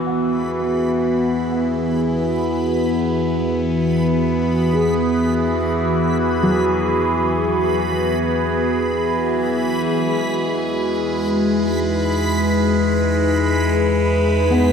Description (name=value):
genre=ambient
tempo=free time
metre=none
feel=none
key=E major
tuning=A4 = 441 Hz
part: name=evolving wavetable pad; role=sustained chords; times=0.0-14.7 s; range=E3 to B4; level=-18 LUFS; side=equal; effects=phaser, built-in reverb
part: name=felt-muted upright piano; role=arpeggios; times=0.0-9.9, 14.5-14.7 s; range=F#3 to F#5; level=-26 LUFS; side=left 1 dB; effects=diffuse ambient delay
part: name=round analog bass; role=bass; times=0.0-14.7 s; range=E2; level=-26 LUFS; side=equal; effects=none
part: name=pedal harmonium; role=drone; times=0.0-14.7 s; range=E3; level=-25 LUFS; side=right 1 dB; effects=stereo widening
part: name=backwards swelling texture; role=texture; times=0.0-14.7 s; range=B5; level=-31 LUFS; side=right 2 dB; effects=built-in reverb
room=wet cathedral reverb, RT60 5.3 s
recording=dark, warm production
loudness=-16 LUFS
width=side -6 dB against mid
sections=0.0-14.7 A section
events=fade-in on analog synth bass 0.0-14.7; fade-in on synth texture 0.0-14.7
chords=0.0 Eadd9; 9.9 G#m/E